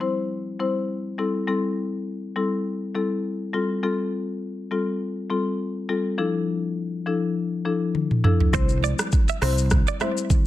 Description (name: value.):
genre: afrobeats.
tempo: 102 BPM.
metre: 4/4.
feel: swing 55% on 16ths.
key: C major.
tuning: A4 = 440 Hz.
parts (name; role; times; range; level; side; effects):
marimba with medium mallets; accompaniment; 0.0-10.2 s; F3 to C5; -24 LUFS; left 3 dB; none.
afro-pop drum kit; drums; 7.9-10.5 s; hi-hat, kick drum, rim click, shaker, toms; -20 LUFS; right 1 dB; soft clipping on snare.
direct-recorded clean electric guitar; riff; 8.5-10.1 s; C5 to E5; -30 LUFS; right 13 dB; tape echo.
fretless electric bass; bass; 8.5-9.8 s; C2; -23 LUFS; right 1 dB; none.
congas; percussion; 8.5-10.4 s; none; -33 LUFS; right 6 dB; none.
room: digital ambience.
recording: dense, heavily limited modern master.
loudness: -22 LUFS.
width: side -14 dB against mid.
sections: 0.0-8.5 A section; 8.5-10.5 B section.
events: drum fill 7.9-8.5.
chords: 0.0 C; 1.2 Am7; 3.5 Fadd9; 6.2 Dmadd9; 8.5 C.